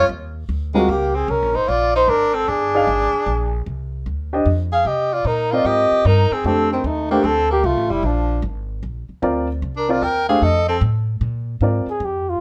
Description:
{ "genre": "jazz", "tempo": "151 BPM", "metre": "4/4", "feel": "swing 66% on 8ths", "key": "Bb mixolydian", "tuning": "A4 = 440 Hz", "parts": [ { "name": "breathy flugelhorn", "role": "melody", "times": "0.0-12.4 s", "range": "C4 to G5", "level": "-21 LUFS", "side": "equal", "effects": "none" }, { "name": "bright tenor saxophone", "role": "second line", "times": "0.0-10.8 s", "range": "Eb3 to Bb4", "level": "-26 LUFS", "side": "equal", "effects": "none" }, { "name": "upright bass", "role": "bass", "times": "0.0-12.4 s", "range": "F1 to C3", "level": "-25 LUFS", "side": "equal", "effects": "none" }, { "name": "warm baby grand piano", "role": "accompaniment", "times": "0.7-11.9 s", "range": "G3 to F5", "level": "-22 LUFS", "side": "equal", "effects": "none" } ], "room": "light reverb", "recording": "none", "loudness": "-19 LUFS", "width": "mono", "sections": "0.0-11.2 A section; 11.2-12.4 B section", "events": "flugelhorn solo 11.2-12.4", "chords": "0.0 Eb7; 1.7 Bb7; 4.9 Cm7; 6.4 F7; 8.0 Bb7; 9.6 Cm7; 10.4 F; 11.2 Bb7", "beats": "| 0.09 0.49 0.88 1.28 | 1.68 2.08 2.47 2.87 | 3.27 3.67 4.06 4.46 | 4.86 5.26 5.65 6.05 | 6.45 6.84 7.24 7.64 | 8.04 8.43 8.83 9.23 | 9.62 10.02 10.42 10.82 | 11.21 11.61 12.01" }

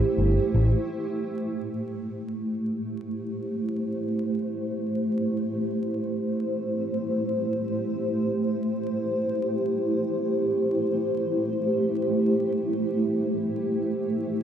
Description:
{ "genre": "ambient dub", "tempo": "free time", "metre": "none", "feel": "none", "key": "A minor", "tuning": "A4 = 440 Hz", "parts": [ { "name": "granular cloud pad", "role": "sustained chords", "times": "0.0-14.4 s", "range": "A3 to C5", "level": "-25 LUFS", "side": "right 1 dB", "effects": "built-in reverb" }, { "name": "overdriven fingered electric bass", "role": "bass", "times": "0.2-0.7 s", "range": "G1 to A1", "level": "-21 LUFS", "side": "equal", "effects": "none" } ], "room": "wet echo chamber reverb, RT60 2.1 s", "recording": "dark, warm production, vinyl crackle", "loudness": "-24 LUFS", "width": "side -9 dB against mid", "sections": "0.9-14.4 A section", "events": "filter sweep on ambient pad 0.9-14.4", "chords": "0.0 Am7", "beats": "free time" }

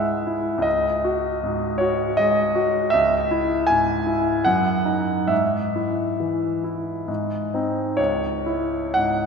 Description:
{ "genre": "classical, romantic nocturne for solo piano", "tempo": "58-81 BPM", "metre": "3/4", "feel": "rubato", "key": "C# minor", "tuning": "A4 = 441 Hz", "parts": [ { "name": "clear concert grand piano", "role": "solo", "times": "0.0-9.3 s", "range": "C#2 to G#5", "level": "-20 LUFS", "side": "equal", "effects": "none" } ], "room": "wet church reverb, RT60 3.2 s", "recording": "minimal, uncompressed stereo recording", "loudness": "-20 LUFS", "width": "side -5 dB against mid", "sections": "0.0-9.3 A section", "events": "none", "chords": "0.0 C#m; 0.7 G#5/C#; 2.9 C#m; 4.5 D#m/F#; 5.3 E/G#; 7.1 G#; 8.0 C#m", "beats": "| 0.66 1.43 2.20 | 2.94 3.69 4.45 | 5.30 6.19 7.08 | 7.98 8.95" }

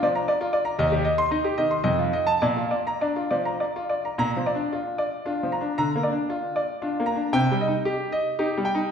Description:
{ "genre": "classical, baroque-style suite movement for grand piano", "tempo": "100-119 BPM", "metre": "3/4", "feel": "rubato", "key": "Bb major", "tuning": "A4 = 441 Hz", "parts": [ { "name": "clear grand piano", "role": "solo", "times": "0.0-8.9 s", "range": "Eb2 to C6", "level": "-22 LUFS", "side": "equal", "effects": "none" } ], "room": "wet recital hall reverb, RT60 1.6 s", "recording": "recorded in a church or concert hall", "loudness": "-22 LUFS", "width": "side -7 dB against mid", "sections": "0.0-4.2 A section; 4.2-8.9 B section", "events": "none", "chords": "0.0 Bb; 0.8 Cm/Eb; 1.9 F7; 2.4 Bb; 5.8 Bb/D; 7.3 Cm (rootless)", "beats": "0.28 | 0.79 1.31 1.85 | 2.43 3.03 3.62 | 4.19 4.73 5.25 | 5.78 6.30 6.83 | 7.35 7.87 8.40" }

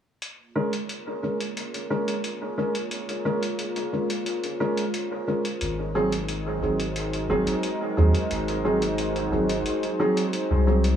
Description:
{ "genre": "ambient dub", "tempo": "89 BPM", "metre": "4/4", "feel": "straight", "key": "Bb minor", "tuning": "A4 = 445 Hz", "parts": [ { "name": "warm analog pad", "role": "sustained chords", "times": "0.2-11.0 s", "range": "Ab3 to Db5", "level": "-30 LUFS", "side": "left 1 dB", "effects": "lush chorus" }, { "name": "electronic hi-hat", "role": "drums", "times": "0.2-11.0 s", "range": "none", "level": "-35 LUFS", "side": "left 2 dB", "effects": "dub echo" }, { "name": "dark upright piano", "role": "stabs", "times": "0.6-10.8 s", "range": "Gb3 to Bb4", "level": "-26 LUFS", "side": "right 1 dB", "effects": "low-pass filter, dub echo" }, { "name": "soft dub sub bass", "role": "bass", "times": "5.6-11.0 s", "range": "Ab1 to Eb2", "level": "-25 LUFS", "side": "equal", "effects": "none" } ], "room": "moderate huge ambient reverb, RT60 4.3 s", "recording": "small room ambience", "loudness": "-23 LUFS", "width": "side -9 dB against mid", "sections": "0.2-11.0 A section", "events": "fade-in on analog synth pad 0.2-11.0; filter sweep on upright piano 0.2-11.0", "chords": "0.2 Bbm7; 5.6 Ab7", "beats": "| 0.22 0.90 1.57 2.24 | 2.92 3.59 4.27 4.94 | 5.62 6.29 6.96 7.64 | 8.31 8.98 9.66 10.33" }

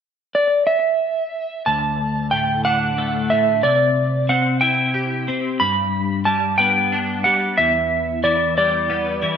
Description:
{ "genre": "rock", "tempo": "61 BPM (dotted quarters)", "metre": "6/8", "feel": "straight", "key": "D mixolydian", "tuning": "A4 = 437 Hz", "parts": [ { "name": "electric slide guitar", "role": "melody", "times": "0.3-9.4 s", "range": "D5 to B5", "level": "-18 LUFS", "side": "right 1 dB", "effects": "slapback echo" }, { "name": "twelve-string electric guitar", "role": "arpeggios", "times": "1.7-9.4 s", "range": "D2 to G4", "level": "-22 LUFS", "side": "left 2 dB", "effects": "ensemble chorus, slapback echo" } ], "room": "moderate concert hall reverb, RT60 2.2 s", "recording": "none", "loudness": "-16 LUFS", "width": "side -7 dB against mid", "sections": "0.0-1.7 A section; 1.7-9.4 B section", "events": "none", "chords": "0.0 N.C.; 1.7 D; 3.6 Cadd9; 5.6 G; 7.6 Em7", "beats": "0.68 | 1.67 2.65 | 3.64 4.63 | 5.62 6.60 | 7.59 8.57" }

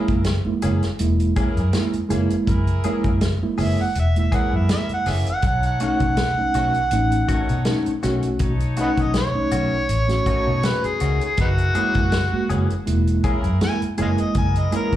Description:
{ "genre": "straight-eighth soul blues", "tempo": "81 BPM", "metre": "4/4", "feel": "swing 55% on 16ths", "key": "F# mixolydian", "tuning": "A4 = 440 Hz", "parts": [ { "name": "mellow reed electric piano", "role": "accompaniment", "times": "0.0-15.0 s", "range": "G#3 to F#4", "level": "-24 LUFS", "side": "right 2 dB", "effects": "fast tremolo, plate reverb, slapback echo" }, { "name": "clear horn section", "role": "sustained chords", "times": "0.0-15.0 s", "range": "D#4 to C#5", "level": "-35 LUFS", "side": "equal", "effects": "plate reverb" }, { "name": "direct-recorded clean electric guitar", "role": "stabs", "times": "0.0-15.0 s", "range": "D#3 to G#4", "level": "-30 LUFS", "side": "left 6 dB", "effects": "ensemble chorus, plate reverb, slapback echo" }, { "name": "vintage muted fingered electric bass", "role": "bass", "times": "0.1-15.0 s", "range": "E1 to B2", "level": "-21 LUFS", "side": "equal", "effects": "none" }, { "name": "warm soul drum kit", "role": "drums", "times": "0.1-15.0 s", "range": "hi-hat, kick drum, snare drum", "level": "-24 LUFS", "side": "equal", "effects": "none" }, { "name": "overdriven harmonica", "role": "melody", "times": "3.6-14.9 s", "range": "B3 to G#5", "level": "-24 LUFS", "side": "right 1 dB", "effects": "plate reverb, slapback echo" } ], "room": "moderate club reverb, RT60 0.8 s", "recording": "live gig heard through the venue's PA, club reverb", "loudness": "-18 LUFS", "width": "side -12 dB against mid", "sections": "0.0-15.0 A section", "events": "harmonica solo 0.0-15.0", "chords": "0.0 F#9; 5.4 B9; 11.4 F#9", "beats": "0.26 1.00 1.74 | 2.48 3.22 3.96 4.70 | 5.44 6.18 6.93 7.67 | 8.41 9.16 9.90 10.64 | 11.38 12.13 12.87 13.61 | 14.36" }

